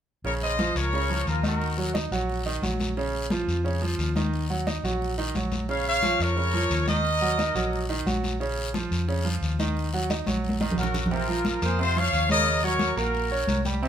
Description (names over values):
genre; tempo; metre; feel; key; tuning
latin, salsa; 177 BPM; 4/4; straight; Bb minor; A4 = 439 Hz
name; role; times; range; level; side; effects
clear trumpet section; melody; 0.2-1.9, 5.7-7.9, 10.8-13.6 s; F4 to F5; -26 LUFS; equal; none
bright concert grand piano; accompaniment; 0.2-13.9 s; C3 to Eb5; -29 LUFS; right 3 dB; none
vintage muted fingered electric bass; bass; 0.2-13.9 s; Bb1 to F2; -28 LUFS; left 1 dB; none
congas; percussion; 0.2-13.9 s; none; -31 LUFS; left 1 dB; none
guiro; percussion; 0.2-13.9 s; none; -36 LUFS; left 4 dB; none
room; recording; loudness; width
moderate studio reverb, RT60 0.9 s; minimal, uncompressed stereo recording; -23 LUFS; side -9 dB against mid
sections
0.2-11.1 A section; 11.1-13.9 B section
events
drum fill 10.3-11.1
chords
0.2 Bbm; 1.6 Ebm; 3.0 Bbm; 4.3 Ebm; 5.7 Bbm; 7.0 Ebm; 8.4 Bbm; 9.8 Ebm; 11.1 Bbsus2; 12.5 Ebm7